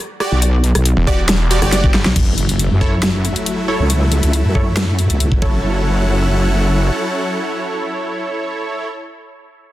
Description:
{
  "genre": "heavy wobble dubstep",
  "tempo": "138 BPM",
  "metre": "4/4",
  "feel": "half-time",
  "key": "F# phrygian",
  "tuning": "A4 = 440 Hz",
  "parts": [
    { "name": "supersaw stab", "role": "stabs", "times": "0.2-8.9 s", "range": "E4 to D5", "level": "-23 LUFS", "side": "right 2 dB", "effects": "low-pass filter, dub echo" },
    { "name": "dubstep drum kit", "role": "drums", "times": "0.2-5.3 s", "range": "crash cymbal, hi-hat, rim click, snare drum", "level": "-19 LUFS", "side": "left 1 dB", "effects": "none" },
    { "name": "wobble bass", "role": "bass", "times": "0.3-6.9 s", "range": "F#1 to F#2", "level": "-15 LUFS", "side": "equal", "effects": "chorus, overdrive" },
    { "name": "snarling distorted saw bass", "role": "bass", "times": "1.0-2.0 s", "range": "E1 to G1", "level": "-17 LUFS", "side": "equal", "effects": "distortion, overdrive" },
    { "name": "electronic kick drum", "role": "drums", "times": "1.1-5.5 s", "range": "none", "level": "-16 LUFS", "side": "equal", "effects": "overdrive" },
    { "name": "supersaw chords", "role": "sustained chords", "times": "2.2-8.9 s", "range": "F#3 to F#5", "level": "-22 LUFS", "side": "equal", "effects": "sidechain pumping" },
    { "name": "impact", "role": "sound effects", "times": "2.2-3.9 s", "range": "none", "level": "-26 LUFS", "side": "equal", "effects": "none" }
  ],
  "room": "little or no reverb",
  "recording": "dense, heavily limited modern master",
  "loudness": "-14 LUFS",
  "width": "side -15 dB against mid",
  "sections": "0.0-2.2 A section; 2.2-5.6 B section; 5.6-9.1 C section",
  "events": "drop 0.0-2.2; drum fill 1.9; impact 2.2-3.9; filter sweep on wobble bass 2.2-5.6; filter sweep on supersaw synth 2.2-5.6",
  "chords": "0.0 Em7; 2.2 F#m7"
}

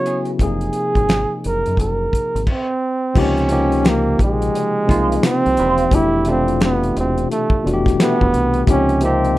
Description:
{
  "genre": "R&B, neo-soul",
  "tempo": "87 BPM",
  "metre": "4/4",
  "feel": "swing 62% on 16ths",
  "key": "unclear",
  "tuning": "A4 = 436 Hz",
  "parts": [
    { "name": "breathy flugelhorn", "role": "melody", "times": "0.0-9.4 s", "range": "Ab3 to C#5", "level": "-19 LUFS", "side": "right 2 dB", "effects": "none" },
    { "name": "barky tine electric piano", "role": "accompaniment", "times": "0.0-9.4 s", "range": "Cb3 to Ab4", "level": "-20 LUFS", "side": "left 3 dB", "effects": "auto-pan" },
    { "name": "electric guitar through a small old amp", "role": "second line", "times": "0.1-0.3, 4.6-8.2 s", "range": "A3 to C5", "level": "-24 LUFS", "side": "right 4 dB", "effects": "wah" },
    { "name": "cloth-damped thuddy drum kit", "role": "drums", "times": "0.1-9.4 s", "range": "crash cymbal, finger snaps, hi-hat, kick drum, snare drum", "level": "-18 LUFS", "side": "equal", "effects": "none" },
    { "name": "deep dub fingered electric bass", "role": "bass", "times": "0.4-9.4 s", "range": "E1 to Gb2", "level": "-22 LUFS", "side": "equal", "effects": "none" }
  ],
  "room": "little or no reverb",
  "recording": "rough home demo mix",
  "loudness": "-15 LUFS",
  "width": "side -16 dB against mid",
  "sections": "0.0-3.2 A section; 3.2-9.4 B section",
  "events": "none",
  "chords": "0.4 Gbmaj9; 3.2 Dbmaj9; 5.9 Fmaj9; 8.7 Dbmaj9"
}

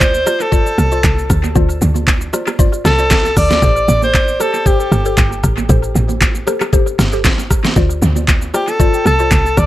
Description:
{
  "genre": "amapiano",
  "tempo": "116 BPM",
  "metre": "4/4",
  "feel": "swing 55% on 16ths",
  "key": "D minor",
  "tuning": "A4 = 443 Hz",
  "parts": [
    { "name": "breathy alto saxophone", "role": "melody", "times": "0.0-5.4, 8.5-9.7 s", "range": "G4 to D5", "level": "-16 LUFS", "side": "equal", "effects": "analog delay" },
    { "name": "mallet-like synth pluck", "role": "stabs", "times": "0.0-9.3 s", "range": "F4 to D5", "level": "-22 LUFS", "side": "left 3 dB", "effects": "chorus, phaser, analog delay" },
    { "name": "tight log drum bass", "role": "bass", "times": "0.0-9.7 s", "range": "G1 to D2", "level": "-16 LUFS", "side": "equal", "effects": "none" },
    { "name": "smooth R&B drum kit", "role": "drums", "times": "0.0-9.7 s", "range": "handclaps, hi-hat, kick drum, rim click, shaker, snare drum", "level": "-14 LUFS", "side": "equal", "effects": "analog delay" },
    { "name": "bongos and congas", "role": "percussion", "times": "0.0-9.4 s", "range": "none", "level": "-25 LUFS", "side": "right 6 dB", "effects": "analog delay" }
  ],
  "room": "light reverb",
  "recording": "echo-heavy mix",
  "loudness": "-11 LUFS",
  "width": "side -15 dB against mid",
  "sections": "0.0-9.7 A section",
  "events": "none",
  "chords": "0.0 Dm7; 3.6 Am7; 7.8 Dm7"
}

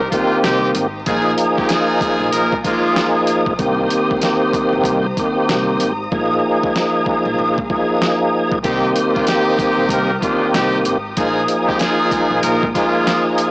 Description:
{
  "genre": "hip hop, boom-bap hip-hop",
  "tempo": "95 BPM",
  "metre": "4/4",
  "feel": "swing 60% on 16ths",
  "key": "unclear",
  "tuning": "A4 = 436 Hz",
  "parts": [
    { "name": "warm studio string section", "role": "sustained chords", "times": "0.0-13.5 s", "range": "F4 to Eb6", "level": "-27 LUFS", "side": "equal", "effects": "high-pass filter, low-pass filter" },
    { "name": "brilliant trumpet section", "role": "stabs", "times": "0.0-3.1, 8.6-13.2 s", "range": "Ab3 to Bb4", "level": "-20 LUFS", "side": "equal", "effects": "high-pass filter, low-pass filter, tape echo" },
    { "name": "upright bass", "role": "bass", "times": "0.0-12.7 s", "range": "Ab1 to C2", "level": "-27 LUFS", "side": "equal", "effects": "none" },
    { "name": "tonewheel organ", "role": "accompaniment", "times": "0.1-13.5 s", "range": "Eb3 to Ab4", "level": "-16 LUFS", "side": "equal", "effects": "chorus vibrato, slow rotary speaker, cassette tape, high-pass filter, low-pass filter" },
    { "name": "dusty soul sampler-style drum kit", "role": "drums", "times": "0.1-13.5 s", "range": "hi-hat, kick drum, snare drum", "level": "-22 LUFS", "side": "equal", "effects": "overdrive" }
  ],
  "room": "moderate studio reverb, RT60 0.7 s",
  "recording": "blown-out, overdriven recording, vinyl crackle, overdrive, small speaker sound",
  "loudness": "-14 LUFS",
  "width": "side -27 dB against mid",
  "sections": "0.0-13.5 A section",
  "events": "hi-hats muted 6.1-8.6",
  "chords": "0.0 Cm7; 1.1 Bb7sus4; 3.6 Cm7; 6.1 Bb7sus4; 8.6 Cm7; 11.2 Bb7sus4"
}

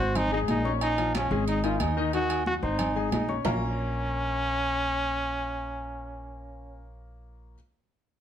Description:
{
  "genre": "latin, salsa",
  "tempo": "182 BPM",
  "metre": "4/4",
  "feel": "straight",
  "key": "Bb minor",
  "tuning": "A4 = 439 Hz",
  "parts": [
    { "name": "brilliant trombone", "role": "melody", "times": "0.0-6.9 s", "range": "Db4 to Gb4", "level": "-29 LUFS", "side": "equal", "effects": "plate reverb" },
    { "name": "clear grand piano", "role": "accompaniment", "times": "0.0-7.5 s", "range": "Eb3 to Db6", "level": "-33 LUFS", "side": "left 6 dB", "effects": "none" },
    { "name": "upright bass", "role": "bass", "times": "0.0-7.5 s", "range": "Ab1 to Eb2", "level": "-32 LUFS", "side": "equal", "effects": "none" },
    { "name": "agogo bells and timbales", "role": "percussion", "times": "0.2-3.5 s", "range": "none", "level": "-34 LUFS", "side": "right 7 dB", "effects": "none" },
    { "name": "congas", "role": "percussion", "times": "0.2-3.5 s", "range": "none", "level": "-34 LUFS", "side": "equal", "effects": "none" }
  ],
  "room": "moderate studio reverb, RT60 0.8 s",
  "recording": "none",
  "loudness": "-25 LUFS",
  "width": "side -10 dB against mid",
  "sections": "0.0-3.5 A section; 3.5-6.1 B section",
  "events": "none",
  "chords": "0.2 Ab; 0.8 Bbm; 1.5 Ab5; 2.1 Ebm; 2.8 Ab; 3.5 Bbm"
}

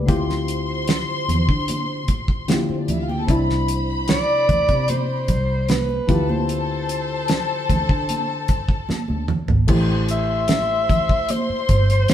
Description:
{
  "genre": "lush 1970s-style soul",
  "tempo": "75 BPM",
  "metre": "4/4",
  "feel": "straight",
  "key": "unclear",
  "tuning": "A4 = 440 Hz",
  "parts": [
    { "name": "barky reed electric piano", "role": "accompaniment", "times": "0.0-12.1 s", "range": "C3 to C5", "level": "-26 LUFS", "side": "left 3 dB", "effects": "overdrive" },
    { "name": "vintage muted fingered electric bass", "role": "bass", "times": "0.0-12.1 s", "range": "G1 to D3", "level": "-23 LUFS", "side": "equal", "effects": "none" },
    { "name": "warm studio string section", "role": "second line", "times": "0.1-12.1 s", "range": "C4 to C6", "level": "-27 LUFS", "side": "left 2 dB", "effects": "none" },
    { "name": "damped 70s drum kit", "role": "drums", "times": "0.1-12.1 s", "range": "crash cymbal, hi-hat, kick drum, snare drum, toms", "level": "-21 LUFS", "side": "equal", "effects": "none" },
    { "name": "congas", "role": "percussion", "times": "0.1-12.1 s", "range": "none", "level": "-28 LUFS", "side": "right 3 dB", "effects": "none" },
    { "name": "breathy alto saxophone", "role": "melody", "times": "4.1-12.1 s", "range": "B4 to E5", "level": "-23 LUFS", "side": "equal", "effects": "tape echo" }
  ],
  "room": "moderate studio reverb, RT60 0.8 s",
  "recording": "band playing live in one room",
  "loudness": "-18 LUFS",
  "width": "side -10 dB against mid",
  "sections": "0.0-9.7 A section; 9.7-12.1 B section",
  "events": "drum fill 8.9-9.7",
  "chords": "0.1 Dm11; 3.3 Cmaj9; 6.1 Dm11; 9.7 Am7"
}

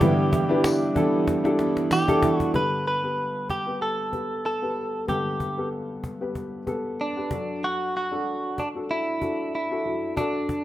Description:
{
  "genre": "piano-driven pop",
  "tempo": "94 BPM",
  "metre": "4/4",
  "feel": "swing 56% on 16ths",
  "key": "G major",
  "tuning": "A4 = 439 Hz",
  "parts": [
    { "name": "direct-recorded clean electric guitar", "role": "melody", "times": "0.0-10.6 s", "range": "D4 to B4", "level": "-27 LUFS", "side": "right 1 dB", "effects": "plate reverb" },
    { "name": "warm upright piano", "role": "accompaniment", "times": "0.0-10.6 s", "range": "F#2 to B4", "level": "-26 LUFS", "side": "left 2 dB", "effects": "plate reverb" },
    { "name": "fingerpicked steel-string acoustic guitar", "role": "riff", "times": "0.0-2.5 s", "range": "G2 to E4", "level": "-25 LUFS", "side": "right 5 dB", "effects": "none" },
    { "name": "cajon", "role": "drums", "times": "0.0-10.6 s", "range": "none", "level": "-30 LUFS", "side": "equal", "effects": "none" },
    { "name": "tambourine", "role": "percussion", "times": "0.6-2.1 s", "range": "none", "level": "-38 LUFS", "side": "left 2 dB", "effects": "none" }
  ],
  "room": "moderate studio reverb, RT60 0.6 s",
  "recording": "rough home demo mix",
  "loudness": "-23 LUFS",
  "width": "side -14 dB against mid",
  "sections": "0.0-2.5 A section; 2.5-10.6 B section",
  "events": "drum fill 1.3-2.5",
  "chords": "0.0 G6; 2.5 Gadd9; 7.3 D/F#"
}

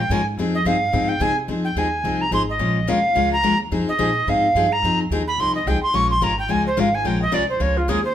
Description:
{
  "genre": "acoustic string swing (jazz manouche)",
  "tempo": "216 BPM",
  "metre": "4/4",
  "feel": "swing 56% on 8ths",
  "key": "F minor",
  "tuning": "A4 = 441 Hz",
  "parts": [
    { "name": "alto recorder", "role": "melody", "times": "0.0-8.1 s", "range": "F4 to Db6", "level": "-20 LUFS", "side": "right 2 dB", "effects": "none" },
    { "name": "upright bass", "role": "bass", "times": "0.0-8.1 s", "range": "Ab1 to C3", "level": "-25 LUFS", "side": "equal", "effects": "none" },
    { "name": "picked steel-string acoustic guitar", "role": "accompaniment", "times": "0.1-8.0 s", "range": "F3 to Bb4", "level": "-23 LUFS", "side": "left 4 dB", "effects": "none" }
  ],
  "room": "moderate large studio reverb, RT60 0.9 s",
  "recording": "band playing live in one room",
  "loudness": "-18 LUFS",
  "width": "side -10 dB against mid",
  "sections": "0.0-1.5 A section; 1.5-8.1 A section",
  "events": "recorder solo 0.0-8.1",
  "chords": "0.4 Fm7; 2.6 Bbm7; 3.7 Fm7; 5.9 Bbm7"
}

